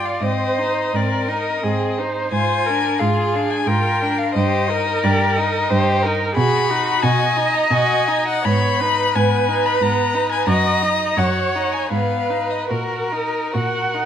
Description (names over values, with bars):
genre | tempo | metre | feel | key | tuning
classical, slow romantic movement for string quartet | 70-92 BPM | 3/4 | rubato | Eb major, Eb minor from 6.4 s | A4 = 440 Hz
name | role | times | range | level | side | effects
rich violin | melody | 0.0-14.1 s | Bb4 to Cb6 | -22 LUFS | left 6 dB | none
rich violin | second line | 0.0-14.1 s | Cb4 to G4 | -24 LUFS | left 1 dB | none
rich viola | accompaniment | 0.0-14.1 s | F#4 to Gb5 | -21 LUFS | right 3 dB | none
warm cello | bass | 0.0-14.1 s | Gb2 to B2 | -23 LUFS | right 2 dB | none
room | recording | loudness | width
moderate recital hall reverb, RT60 1.5 s | vinyl crackle | -16 LUFS | side -9 dB against mid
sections
0.0-14.1 A section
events
none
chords
0.2 Ab; 4.4 Eb/G; 6.4 B; 8.4 Abm; 10.5 Ebm/Gb; 11.9 Abm; 12.7 Ebm/Bb